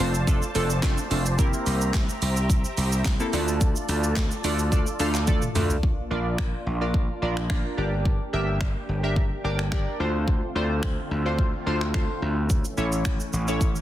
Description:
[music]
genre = dance-pop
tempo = 108 BPM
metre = 4/4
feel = straight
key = D minor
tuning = A4 = 440 Hz
[part]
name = chorused retro synth keys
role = accompaniment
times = 0.0-13.7 s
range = A3 to F5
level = -29 LUFS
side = equal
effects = sidechain pumping
[part]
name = filtered supersaw swell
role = sustained chords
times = 0.0-13.8 s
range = D3 to Bb5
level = -33 LUFS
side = equal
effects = sidechain pumping
[part]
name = gritty slap bass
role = bass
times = 0.0-13.7 s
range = F1 to D2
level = -26 LUFS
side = equal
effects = overdrive, sidechain pumping
[part]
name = house drum kit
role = drums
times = 0.0-13.8 s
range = finger snaps, handclaps, hi-hat, kick drum, shaker, snare drum, toms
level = -25 LUFS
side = equal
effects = soft clipping on snare
[sound]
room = little or no reverb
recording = dense, heavily limited modern master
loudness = -22 LUFS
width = side -13 dB against mid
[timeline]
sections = 0.0-5.8 A section; 5.8-13.8 B section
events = drum fill 5.3-5.8, 13.6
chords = 0.0 F6; 1.4 C7; 3.3 Dm; 5.8 Bb; 7.8 Gm; 10.0 Dm7; 12.5 A

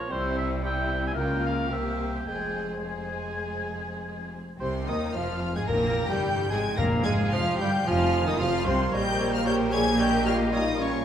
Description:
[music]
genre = quick classical-period movement for symphony orchestra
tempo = 103-115 BPM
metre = 4/4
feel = rubato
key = F minor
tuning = A4 = 440 Hz
[part]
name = warm clarinet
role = second line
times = 0.0-11.0 s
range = Bb4 to Ab5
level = -36 LUFS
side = equal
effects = none
[part]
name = warm cor anglais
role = second line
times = 0.0-10.9 s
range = Bb4 to Ab5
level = -35 LUFS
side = right 2 dB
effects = none
[part]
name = warm bassoon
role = accompaniment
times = 0.0-10.9 s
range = C3 to Bb3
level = -34 LUFS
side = equal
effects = none
[part]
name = rich chamber violin section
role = melody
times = 0.1-11.0 s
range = G4 to Bb6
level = -36 LUFS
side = left 3 dB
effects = none
[part]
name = rich chamber violin section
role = second line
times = 0.1-11.0 s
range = C4 to C5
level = -35 LUFS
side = left 2 dB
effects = none
[part]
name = small flute group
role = second line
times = 0.1-11.0 s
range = C5 to Ab6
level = -35 LUFS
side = left 3 dB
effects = none
[part]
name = rich chamber viola section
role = accompaniment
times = 0.1-11.0 s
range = C3 to G4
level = -34 LUFS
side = right 1 dB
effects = none
[part]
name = mellow French horn section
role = sustained chords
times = 0.1-11.0 s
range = G3 to Bb4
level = -33 LUFS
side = left 3 dB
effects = none
[part]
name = clear chamber double bass section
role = bass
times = 0.1-11.0 s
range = F1 to Eb2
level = -32 LUFS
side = right 2 dB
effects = none
[part]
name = rich studio cello section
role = bass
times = 0.1-11.0 s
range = C2 to Db3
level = -32 LUFS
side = right 2 dB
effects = none
[part]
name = timpani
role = percussion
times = 5.7-7.6 s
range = F2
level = -33 LUFS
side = left 2 dB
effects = none
[sound]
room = wet recital hall reverb, RT60 1.8 s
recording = none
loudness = -24 LUFS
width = side -9 dB against mid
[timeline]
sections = 0.0-4.6 A section; 4.6-11.0 A section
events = none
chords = 0.1 C; 1.2 Bbm/Db; 1.7 C7; 2.3 Fm; 4.6 Fm/C; 5.7 Gm; 6.8 Fm; 8.9 Gdim/Bb

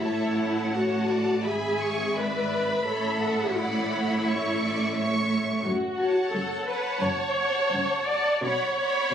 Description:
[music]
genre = classical, slow romantic movement for string orchestra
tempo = 86 BPM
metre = 4/4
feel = rubato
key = unclear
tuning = A4 = 441 Hz
[part]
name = warm symphonic violin section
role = melody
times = 0.0-9.1 s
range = A5 to C#6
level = -33 LUFS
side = equal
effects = none
[part]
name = warm symphonic violin section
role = second line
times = 0.0-9.1 s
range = C#5 to G#5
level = -32 LUFS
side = equal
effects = none
[part]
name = dark symphonic viola section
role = accompaniment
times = 0.0-9.1 s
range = E4 to D5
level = -26 LUFS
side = left 1 dB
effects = none
[part]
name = rich studio cello section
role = bass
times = 0.0-9.0 s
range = F#2 to B2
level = -29 LUFS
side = right 2 dB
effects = none
[part]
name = warm symphonic double bass section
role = bass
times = 0.0-9.0 s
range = F#1 to B1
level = -40 LUFS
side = right 1 dB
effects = none
[sound]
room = moderate studio reverb, RT60 0.7 s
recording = recorded on a phone in the room, club reverb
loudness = -23 LUFS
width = side -8 dB against mid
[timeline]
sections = 0.0-9.1 A section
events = none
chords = 0.0 A; 1.5 E/G#; 2.9 A; 5.6 F#m; 8.4 Bm

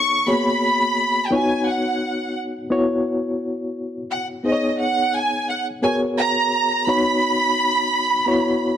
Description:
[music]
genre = soul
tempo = 86 BPM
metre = 4/4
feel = straight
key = unclear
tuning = A4 = 440 Hz
[part]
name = warm symphonic violin section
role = melody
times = 0.0-8.8 s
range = D#5 to C#6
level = -20 LUFS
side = right 2 dB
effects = none
[part]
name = reed electric piano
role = accompaniment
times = 0.0-8.8 s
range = A#3 to C#5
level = -22 LUFS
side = left 1 dB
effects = fast tremolo
[sound]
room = light reverb, studio ambience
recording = none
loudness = -18 LUFS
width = side -9 dB against mid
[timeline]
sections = 0.0-8.8 A section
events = none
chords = 0.3 G#m11; 1.3 C#9sus4; 2.7 F#7sus4; 4.4 B69; 5.8 G#m11/B; 6.9 C#9sus4; 8.3 F#7sus4

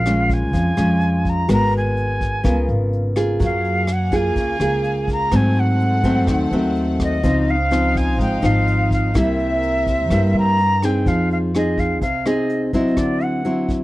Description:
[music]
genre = bossa nova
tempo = 125 BPM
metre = 4/4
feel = straight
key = F minor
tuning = A4 = 438 Hz
[part]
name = jazz flute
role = melody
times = 0.0-13.7 s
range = D5 to Bb5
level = -22 LUFS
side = equal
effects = none
[part]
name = nylon-string guitar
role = accompaniment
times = 0.0-13.8 s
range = G2 to Bb4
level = -20 LUFS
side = equal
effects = none
[part]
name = upright bass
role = bass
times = 0.0-13.8 s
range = Ab1 to Ab2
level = -21 LUFS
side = equal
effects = none
[part]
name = vintage brush drum kit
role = drums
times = 0.1-13.8 s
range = hi-hat, kick drum, rim click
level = -25 LUFS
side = equal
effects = none
[part]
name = clear studio string section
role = sustained chords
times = 3.4-11.0 s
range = Bb3 to Gb5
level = -30 LUFS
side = equal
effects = none
[sound]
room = little or no reverb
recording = dry, close 1970s-style studio recording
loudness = -16 LUFS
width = side -17 dB against mid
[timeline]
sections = 0.0-11.1 A section; 11.1-13.8 B section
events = none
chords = 0.0 Bbm7; 1.5 Abm9; 2.4 Db6; 3.4 Gbmaj9; 5.3 Ab7b9; 7.2 Dbmaj9; 9.1 C7; 11.1 Fm7; 13.0 D9

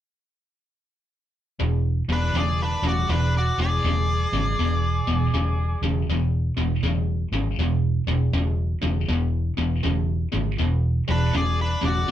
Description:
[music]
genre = rock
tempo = 80 BPM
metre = 4/4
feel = swing 65% on 8ths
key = E mixolydian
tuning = A4 = 441 Hz
[part]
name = distorted electric guitar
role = riff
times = 1.6-12.1 s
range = E2 to C#3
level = -25 LUFS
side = right 1 dB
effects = overdrive
[part]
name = vintage muted fingered electric bass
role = bass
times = 1.6-12.0 s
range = E1 to G#1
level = -24 LUFS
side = equal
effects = none
[part]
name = octave-fuzz lead guitar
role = melody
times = 2.1-5.8, 11.1-12.1 s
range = B4 to D5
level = -27 LUFS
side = left 3 dB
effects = distortion
[part]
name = biting lead guitar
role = second line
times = 2.1-5.8, 11.1-12.1 s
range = D4 to G#4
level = -31 LUFS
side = right 3 dB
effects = overdrive
[sound]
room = light reverb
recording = band playing live in one room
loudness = -21 LUFS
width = side -11 dB against mid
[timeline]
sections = 1.6-12.1 A section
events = none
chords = 1.6 E7

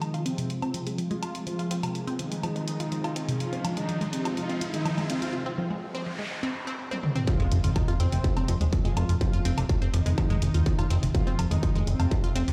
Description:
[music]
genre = melodic techno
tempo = 124 BPM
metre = 4/4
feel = straight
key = F minor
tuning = A4 = 440 Hz
[part]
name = mellow synth brass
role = melody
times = 0.0-12.4 s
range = C3 to F4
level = -36 LUFS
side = equal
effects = chorus, phaser, sidechain pumping, digital delay
[part]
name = lush unison pad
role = sustained chords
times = 0.0-5.3 s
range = C3 to Ab4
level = -37 LUFS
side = equal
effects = chorus, sidechain pumping
[part]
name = unison pluck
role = arpeggios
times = 0.0-12.5 s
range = C3 to F4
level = -35 LUFS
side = equal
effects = sidechain pumping, tape echo
[part]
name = techno drum kit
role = drums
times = 0.0-12.5 s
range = hi-hat, toms, woodblock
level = -38 LUFS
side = equal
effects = none
[part]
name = riser, noise sweep and impact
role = sound effects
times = 1.9-9.2 s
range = none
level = -39 LUFS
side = equal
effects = none
[part]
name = electronic kick drum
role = drums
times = 7.3-12.2 s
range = none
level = -29 LUFS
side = equal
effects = distortion
[part]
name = fat analog bass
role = bass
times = 7.4-12.5 s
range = Eb1 to F1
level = -28 LUFS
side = equal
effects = sidechain pumping
[sound]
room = moderate lush hall reverb, RT60 2.0 s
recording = played on a big sound system in a bare room, large studio reverb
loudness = -27 LUFS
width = mono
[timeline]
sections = 0.0-7.3 A section; 7.3-12.5 B section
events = build-up 0.0-7.3; filter sweep on synth arpeggio sound 0.0-7.3; filter sweep on analog synth pad 0.0-7.3; riser 1.9-5.3; noise sweep 5.3-7.3; drum fill 6.9-7.3; drop 7.3-12.5; impact 7.3-9.2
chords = 0.0 Fm; 7.3 F5

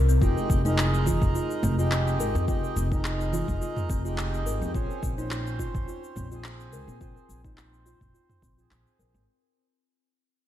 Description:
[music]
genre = organic downtempo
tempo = 106 BPM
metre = 4/4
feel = swing 54% on 16ths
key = F minor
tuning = A4 = 440 Hz
[part]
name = kalimba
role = arpeggios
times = 0.0-9.3 s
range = C4 to Bb4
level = -33 LUFS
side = left 3 dB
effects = low-pass filter, analog delay
[part]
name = upright bass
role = bass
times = 0.0-9.2 s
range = F1 to Bb2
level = -27 LUFS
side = equal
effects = sidechain pumping
[part]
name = deep house drum kit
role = drums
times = 0.1-9.3 s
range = cabasa, handclaps, toms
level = -34 LUFS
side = equal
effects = small room ambience
[part]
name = hand-pumped harmonium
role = accompaniment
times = 0.2-9.3 s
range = Ab3 to C5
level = -34 LUFS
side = right 4 dB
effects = sidechain pumping, low-pass filter, analog delay
[part]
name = electronic kick drum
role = drums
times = 0.2-8.5 s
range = none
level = -29 LUFS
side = equal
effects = small room ambience
[part]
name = congas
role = percussion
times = 0.4-4.6 s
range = none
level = -36 LUFS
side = right 4 dB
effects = none
[sound]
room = light reverb, studio reverb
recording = none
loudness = -24 LUFS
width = side -12 dB against mid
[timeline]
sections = 0.2-9.3 A section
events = fade-out 0.2-9.3; filter sweep on kalimba 0.2-9.3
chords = 0.2 Fm7; 4.7 Bbm7

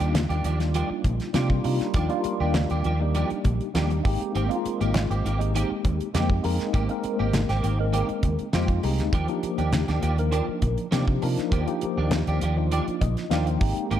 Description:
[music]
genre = electric jazz fusion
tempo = 100 BPM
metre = 4/4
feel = straight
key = Eb major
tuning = A4 = 440 Hz
[part]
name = bright tine electric piano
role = accompaniment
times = 0.0-14.0 s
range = F3 to G5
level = -28 LUFS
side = left 1 dB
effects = medium stereo tremolo, phaser
[part]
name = clean electric guitar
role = stabs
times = 0.0-14.0 s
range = Eb3 to G4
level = -32 LUFS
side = right 4 dB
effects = ensemble chorus
[part]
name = fingered electric bass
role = bass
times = 0.0-14.0 s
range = Ab1 to C3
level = -25 LUFS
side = equal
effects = none
[part]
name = damped 70s drum kit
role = drums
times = 0.0-14.0 s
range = hi-hat, kick drum, snare drum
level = -28 LUFS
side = equal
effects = none
[part]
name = congas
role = percussion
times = 0.1-14.0 s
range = none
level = -32 LUFS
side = left 2 dB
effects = none
[sound]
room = light reverb, studio ambience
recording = dark, warm production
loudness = -22 LUFS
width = side -10 dB against mid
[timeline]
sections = 0.0-14.0 A section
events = tine electric piano fill 12.7-13.9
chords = 0.0 Ebmaj9; 4.0 Abmaj9; 9.1 Ebmaj9

